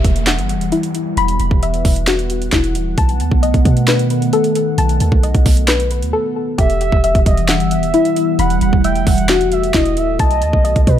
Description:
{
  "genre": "hip hop, trap",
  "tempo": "133 BPM",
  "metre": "4/4",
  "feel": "half-time",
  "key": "E harmonic minor",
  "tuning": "A4 = 438 Hz",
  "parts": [
    { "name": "dark analog pad", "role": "sustained chords", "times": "0.2-11.0 s", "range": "D#3 to F#5", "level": "-21 LUFS", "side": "right 1 dB", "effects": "chorus, phaser" },
    { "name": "soft round pluck", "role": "arpeggios", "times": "0.0-11.0 s", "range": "E4 to B5", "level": "-19 LUFS", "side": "left 5 dB", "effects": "chorus, low-pass filter, ping-pong delay" },
    { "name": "warm 808-style bass", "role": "bass", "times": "0.0-11.0 s", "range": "D#1 to B2", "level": "-18 LUFS", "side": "right 1 dB", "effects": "none" },
    { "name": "trap drum kit", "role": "drums", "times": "0.0-11.0 s", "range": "handclaps, hi-hat, kick drum, snare drum", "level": "-16 LUFS", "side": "equal", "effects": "none" },
    { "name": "downlifter", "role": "sound effects", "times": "0.0-3.0 s", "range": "none", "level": "-32 LUFS", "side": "right 3 dB", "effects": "none" },
    { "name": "gliding portamento lead", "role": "second line", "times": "6.6-11.0 s", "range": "B4 to G5", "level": "-20 LUFS", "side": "right 5 dB", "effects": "chorus, ping-pong delay" }
  ],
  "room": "little or no reverb",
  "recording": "none",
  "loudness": "-12 LUFS",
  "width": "side -10 dB against mid",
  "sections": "0.0-11.0 A section",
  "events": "break 6.1-6.6",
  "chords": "0.0 Emadd9; 3.0 B7; 6.6 Emadd9; 10.2 B7"
}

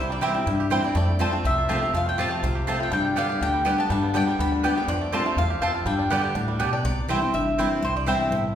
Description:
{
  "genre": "bluegrass",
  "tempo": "244 BPM",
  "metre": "4/4",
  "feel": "straight",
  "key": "unclear",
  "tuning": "A4 = 440 Hz",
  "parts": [
    { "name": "bluegrass banjo", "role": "melody", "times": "0.0-6.8 s", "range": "E3 to G4", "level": "-32 LUFS", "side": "right 4 dB", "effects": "none" },
    { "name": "mandolin", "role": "melody", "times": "0.0-8.6 s", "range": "C5 to B5", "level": "-27 LUFS", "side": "equal", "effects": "none" },
    { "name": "picked steel-string acoustic guitar", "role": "accompaniment", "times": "0.0-8.6 s", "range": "E2 to G4", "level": "-26 LUFS", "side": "left 3 dB", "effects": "none" },
    { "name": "upright bass", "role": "bass", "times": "0.0-8.6 s", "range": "G1 to G2", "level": "-28 LUFS", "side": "equal", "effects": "none" },
    { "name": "mandolin", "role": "stabs", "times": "0.2-8.2 s", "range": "B3 to A5", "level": "-28 LUFS", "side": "right 3 dB", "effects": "none" }
  ],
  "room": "wet recital hall reverb, RT60 1.5 s",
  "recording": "recorded in a church or concert hall",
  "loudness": "-21 LUFS",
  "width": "side -9 dB against mid",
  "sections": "0.0-6.8 A section; 6.8-8.6 A section",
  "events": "none",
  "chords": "0.0 C; 1.0 F; 2.9 G; 4.9 F; 5.9 G; 6.8 C"
}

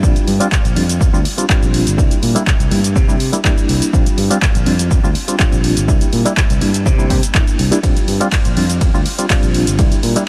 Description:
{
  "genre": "filtered disco house",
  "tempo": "123 BPM",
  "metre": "4/4",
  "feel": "straight",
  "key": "unclear",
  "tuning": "A4 = 440 Hz",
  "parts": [
    { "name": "barky reed electric piano", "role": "accompaniment", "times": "0.0-10.2 s", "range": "G3 to G4", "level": "-21 LUFS", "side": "equal", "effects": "fast tremolo, phaser, sidechain pumping" },
    { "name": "overdriven fingered electric bass", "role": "bass", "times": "0.0-10.1 s", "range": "G1 to C3", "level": "-20 LUFS", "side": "equal", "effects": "tube saturation, sidechain pumping" },
    { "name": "electronic kick drum", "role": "drums", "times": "0.0-9.9 s", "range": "none", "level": "-17 LUFS", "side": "equal", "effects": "none" },
    { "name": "punchy analog drum machine", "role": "drums", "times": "0.0-10.3 s", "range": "handclaps, hi-hat, ride cymbal, shaker", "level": "-24 LUFS", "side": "equal", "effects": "sidechain pumping on hats, sidechain pumping on perc, sidechain pumping on cymbals" }
  ],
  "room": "light reverb",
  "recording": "lossy compression artefacts",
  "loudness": "-14 LUFS",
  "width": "mono",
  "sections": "0.0-10.3 A section",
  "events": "none",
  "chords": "0.0 Bb6; 2.0 C7; 3.9 Bb6; 5.9 C7; 7.8 Bb6"
}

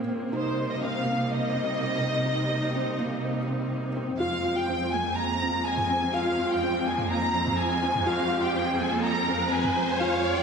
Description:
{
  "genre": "piano and strings electronica",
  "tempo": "124 BPM",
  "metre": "4/4",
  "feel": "straight",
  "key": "F minor",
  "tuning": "A4 = 440 Hz",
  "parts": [
    { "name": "warm string quartet", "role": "sustained chords", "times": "0.0-10.4 s", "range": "C3 to Eb4", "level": "-32 LUFS", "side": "equal", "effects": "stereo widening" },
    { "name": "warm symphonic cello section", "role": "bass", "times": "0.0-10.4 s", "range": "F2 to C3", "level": "-33 LUFS", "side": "equal", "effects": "none" },
    { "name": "felt-muted upright piano", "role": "riff", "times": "0.1-10.4 s", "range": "Bb3 to F4", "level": "-30 LUFS", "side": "right 1 dB", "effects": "ensemble chorus, analog delay" },
    { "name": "dark studio violin section", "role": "melody", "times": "0.3-10.4 s", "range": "C5 to Bb5", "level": "-28 LUFS", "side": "equal", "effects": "analog delay" },
    { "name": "riser", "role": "sound effects", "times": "6.7-10.4 s", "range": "none", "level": "-34 LUFS", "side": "equal", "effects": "none" },
    { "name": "electronic toms", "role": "drums", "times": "5.8-9.7 s", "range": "none", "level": "-36 LUFS", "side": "equal", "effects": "overdrive, low-pass filter on toms, low-pass filter on room" }
  ],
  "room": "wet lush hall reverb, RT60 2.3 s",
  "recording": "dreamy mix soaked in reverb",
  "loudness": "-24 LUFS",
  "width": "side -6 dB against mid",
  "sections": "0.0-4.2 A section; 4.2-10.4 B section",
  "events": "build-up 4.2-10.4; riser 6.7-10.4",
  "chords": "0.3 Cm7; 4.2 Fm"
}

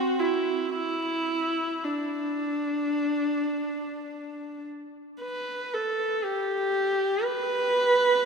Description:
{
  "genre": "classical, free, expressive piece for unaccompanied viola",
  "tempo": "free time",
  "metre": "none",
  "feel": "none",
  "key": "unclear",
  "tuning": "A4 = 440 Hz",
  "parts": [
    { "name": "rich viola", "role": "solo", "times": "0.0-8.3 s", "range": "C4 to B4", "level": "-25 LUFS", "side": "right 1 dB", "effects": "none" }
  ],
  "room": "wet church reverb, RT60 3.7 s",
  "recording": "none",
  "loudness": "-25 LUFS",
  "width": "side -5 dB against mid",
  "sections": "0.0-8.3 A section",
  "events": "none",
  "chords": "none"
}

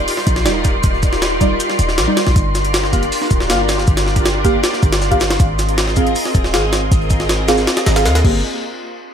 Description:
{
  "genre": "drum and bass, jungle",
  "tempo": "158 BPM",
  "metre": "4/4",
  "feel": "straight",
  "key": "G phrygian",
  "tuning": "A4 = 442 Hz",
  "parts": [
    { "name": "soft string machine", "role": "sustained chords", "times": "0.0-8.4 s", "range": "C4 to Eb5", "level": "-21 LUFS", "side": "equal", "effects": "ensemble chorus" },
    { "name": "warm 808-style bass", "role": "bass", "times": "0.0-8.4 s", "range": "D1 to Eb2", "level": "-18 LUFS", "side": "equal", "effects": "none" },
    { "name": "wind-like tuned noise texture", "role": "texture", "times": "0.0-8.4 s", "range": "C6", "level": "-26 LUFS", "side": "equal", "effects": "built-in reverb" },
    { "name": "crunchy breakbeat drum kit", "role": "drums", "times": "0.1-8.1 s", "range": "hi-hat, shaker, snare drum", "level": "-30 LUFS", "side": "left 2 dB", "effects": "none" },
    { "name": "jungle sampler-style drum kit", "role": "drums", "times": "0.1-8.3 s", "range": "crash cymbal, hi-hat, kick drum, snare drum", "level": "-17 LUFS", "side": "equal", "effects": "overdrive, studio reverb" },
    { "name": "deep mellow chord stab", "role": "stabs", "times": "0.5-8.4 s", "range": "G3 to F5", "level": "-21 LUFS", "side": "right 1 dB", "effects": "chorus, dub echo" }
  ],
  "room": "light reverb, studio reverb",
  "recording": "none",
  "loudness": "-13 LUFS",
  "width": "side -8 dB against mid",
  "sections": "0.0-8.4 A section",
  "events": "drop 0.0-8.4",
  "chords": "0.0 Ebmaj7; 2.4 Gm7; 5.4 Ab6; 8.2 Gm7; 8.4 N.C."
}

